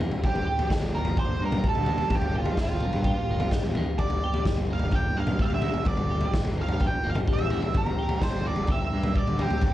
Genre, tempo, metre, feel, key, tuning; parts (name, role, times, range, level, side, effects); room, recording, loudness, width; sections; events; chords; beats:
psychedelic rock; 128 BPM; 4/4; straight; G dorian; A4 = 440 Hz
twelve-string electric guitar; riff; 0.0-9.7 s; G2 to G4; -32 LUFS; left 1 dB; phaser
fuzz picked electric bass; bass; 0.0-9.7 s; G1 to G2; -31 LUFS; equal; overdrive
raw garage drum kit; drums; 0.0-9.7 s; kick drum, snare drum, toms; -26 LUFS; equal
octave-fuzz lead guitar; melody; 0.2-9.7 s; F4 to G5; -31 LUFS; right 2 dB; distortion, analog delay
small room ambience; -23 LUFS; side -14 dB against mid
0.0-9.7 A section
0.0 Gm
| 0.23 0.70 1.18 1.65 | 2.12 2.58 3.06 3.52 | 4.00 4.46 4.93 5.40 | 5.87 6.34 6.81 7.28 | 7.75 8.22 8.69 9.16 | 9.63